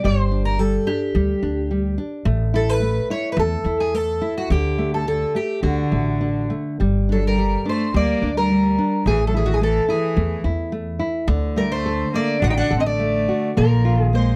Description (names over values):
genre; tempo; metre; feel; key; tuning
fado-style ballad; 107 BPM; 4/4; rubato; G harmonic minor; A4 = 441 Hz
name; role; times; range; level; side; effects
fingerpicked twelve-string acoustic guitar; melody; 0.0-14.4 s; F#4 to G5; -25 LUFS; equal; none
nylon-string guitar; accompaniment; 0.0-14.4 s; D3 to A4; -27 LUFS; equal; none
upright bass; bass; 0.0-14.3 s; G1 to E2; -24 LUFS; equal; none
rich cello; second line; 5.6-14.4 s; D3 to Eb4; -27 LUFS; equal; none
room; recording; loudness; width
light reverb; dry, close 1970s-style studio recording; -20 LUFS; mono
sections
0.0-14.4 A section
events
none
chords
0.0 G5; 2.3 A5; 4.5 D5; 5.6 D; 6.8 Gm; 9.1 A5; 11.3 D; 13.6 Bb5